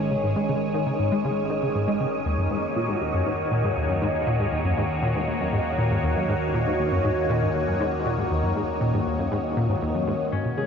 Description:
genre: ambient, sequencer-driven space music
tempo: 119 BPM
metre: 4/4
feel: straight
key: Eb minor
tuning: A4 = 440 Hz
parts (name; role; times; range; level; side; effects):
- phased analog pad; sustained chords; 0.0-10.7 s; Eb3 to Db5; -26 LUFS; left 2 dB; phaser, chorus
- plucky analog bass; riff; 0.0-10.6 s; Eb2 to Ab3; -25 LUFS; equal; ensemble chorus, analog delay
- analog drone; bass; 0.0-10.7 s; Ab1 to Eb2; -35 LUFS; equal; chorus, tube saturation
- wind-like tuned noise texture; texture; 0.0-10.7 s; Eb5; -33 LUFS; right 6 dB; built-in reverb, analog chorus
- concert harp; arpeggios; 10.3-10.7 s; Db4 to Ab4; -30 LUFS; left 4 dB; auto-pan, low-pass filter, analog delay
room: wet huge ambient reverb, RT60 9.0 s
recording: dreamy mix soaked in reverb, nothing above 7.6 kHz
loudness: -22 LUFS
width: side -7 dB against mid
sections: 0.0-10.3 A section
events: none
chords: 0.0 Absus4; 2.3 Ebm7

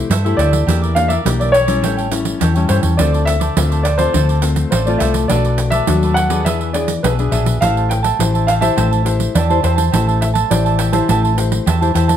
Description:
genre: samba and choro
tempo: 104 BPM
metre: 4/4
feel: straight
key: A minor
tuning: A4 = 440 Hz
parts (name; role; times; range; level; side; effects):
- dark grand piano; melody; 0.0-11.8 s; B4 to G5; -20 LUFS; equal; plate reverb
- nylon-string guitar; accompaniment; 0.0-12.2 s; G2 to C5; -20 LUFS; left 6 dB; none
- cavaquinho; accompaniment; 0.1-12.2 s; D4 to A5; -22 LUFS; right 7 dB; none
- woody fretless electric bass; bass; 0.1-12.2 s; A1 to G2; -17 LUFS; equal; none
- pandeiro; percussion; 0.1-12.2 s; none; -22 LUFS; right 6 dB; none
room: moderate studio reverb, RT60 0.6 s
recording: none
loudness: -13 LUFS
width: side -10 dB against mid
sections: 0.0-12.2 A section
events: none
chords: 0.0 C6; 0.7 Em7b5; 1.8 A7; 3.0 Dm7; 5.3 Bm7; 6.5 E7; 7.6 Am7

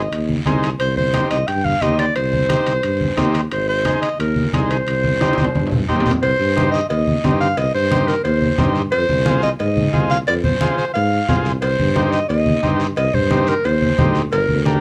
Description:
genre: latin, cumbia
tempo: 178 BPM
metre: 4/4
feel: straight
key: C minor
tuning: A4 = 440 Hz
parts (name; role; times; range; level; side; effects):
- bright clarinet; melody; 0.0-14.6 s; Bb4 to G5; -22 LUFS; equal; none
- overdriven combo organ; accompaniment; 0.0-14.8 s; D4 to C5; -24 LUFS; equal; none
- warm tuba; bass; 0.0-14.8 s; G1 to Ab2; -23 LUFS; equal; none
- congas; percussion; 0.1-14.8 s; none; -24 LUFS; equal; none
- guiro; percussion; 0.1-14.8 s; none; -37 LUFS; equal; none
- timbales and cowbell; percussion; 0.1-14.5 s; none; -30 LUFS; equal; none
room: moderate studio ambience, RT60 0.5 s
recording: dark, warm production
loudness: -18 LUFS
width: mono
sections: 0.0-6.2 A section; 6.2-14.8 B section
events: drum fill 5.2-6.2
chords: 0.0 Ab; 0.8 Cm; 3.5 Ab; 4.9 Cm; 8.9 Fm; 11.6 Cm

